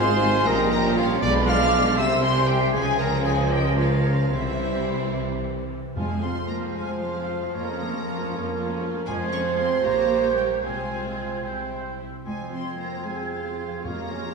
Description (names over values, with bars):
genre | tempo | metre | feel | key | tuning
classical | 72-81 BPM (dotted quarters) | 6/8 | rubato | F minor | A4 = 440 Hz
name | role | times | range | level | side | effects
rich symphonic violin section | melody | 0.0-14.3 s | E5 to F6 | -32 LUFS | left 4 dB | none
dark clarinet | second line | 0.0-14.3 s | E4 to F5 | -34 LUFS | left 1 dB | none
flute section | second line | 0.0-14.3 s | C5 to Ab6 | -32 LUFS | equal | none
rich symphonic violin section | second line | 0.0-14.3 s | Ab3 to F5 | -35 LUFS | equal | none
warm oboe | second line | 0.0-14.3 s | Ab4 to F5 | -35 LUFS | right 3 dB | none
rich symphonic viola section | accompaniment | 0.0-14.3 s | C3 to G4 | -33 LUFS | right 1 dB | none
warm French horn section | sustained chords | 0.0-14.3 s | F3 to C5 | -28 LUFS | right 3 dB | none
concert harp | arpeggios | 0.0-14.3 s | F2 to F5 | -34 LUFS | left 4 dB | none
mellow trumpet | stabs | 0.0-5.1 s | E4 to F5 | -27 LUFS | right 1 dB | none
rich symphonic double bass section | bass | 0.0-14.3 s | Ab1 to F2 | -32 LUFS | right 3 dB | none
warm symphonic cello section | bass | 0.0-14.3 s | Ab2 to Db4 | -32 LUFS | right 1 dB | none
warm tuba | bass | 0.0-5.8 s | Ab1 to Db2 | -28 LUFS | right 2 dB | none
mellow bassoon | accompaniment | 6.0-14.2 s | F3 to Db4 | -36 LUFS | right 1 dB | none
timpani | percussion | 6.0-6.7, 9.1-9.8, 13.8-14.3 s | F2 | -34 LUFS | right 1 dB | none
room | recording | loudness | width
wet scoring stage reverb, RT60 1.7 s | small room ambience | -21 LUFS | side -4 dB against mid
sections
0.0-6.0 A section; 6.0-14.3 B section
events
none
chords
0.5 Gm7b5/Bb; 1.2 Bdim7; 2.0 C5; 2.7 Db; 4.3 C; 6.0 Fm; 7.6 Bbm/F; 9.1 Fm; 9.8 Gdim/Bb; 10.6 Fm/C; 11.4 C; 12.3 Fm